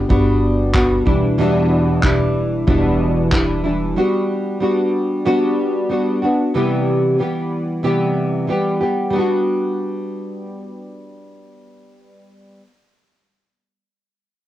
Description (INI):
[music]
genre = acoustic pop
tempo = 93 BPM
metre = 4/4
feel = straight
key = G major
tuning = A4 = 439 Hz
[part]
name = nylon-string guitar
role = accompaniment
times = 0.0-12.7 s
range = E2 to G4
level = -17 LUFS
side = equal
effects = double-tracked left and right, cassette tape, plate reverb
[part]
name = upright bass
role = bass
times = 0.0-3.9 s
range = E1 to G1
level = -21 LUFS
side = equal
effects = none
[part]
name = unplugged drum kit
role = drums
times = 0.1-3.5 s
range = handclaps, kick drum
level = -19 LUFS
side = equal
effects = cassette tape
[sound]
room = moderate studio reverb, RT60 0.6 s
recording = home recording on cassette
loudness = -15 LUFS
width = side -13 dB against mid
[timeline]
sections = 0.0-9.1 A section; 9.1-11.7 B section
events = none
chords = 0.0 Gmaj7; 1.1 Em7; 4.0 Gmaj7; 6.5 Cmaj7; 9.1 Gmaj7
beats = 0.10 0.74 | 1.39 2.03 2.68 3.32 | 3.97 4.61 5.26 5.90 | 6.55 7.20 7.84 8.49 | 9.13 9.78 10.43 11.07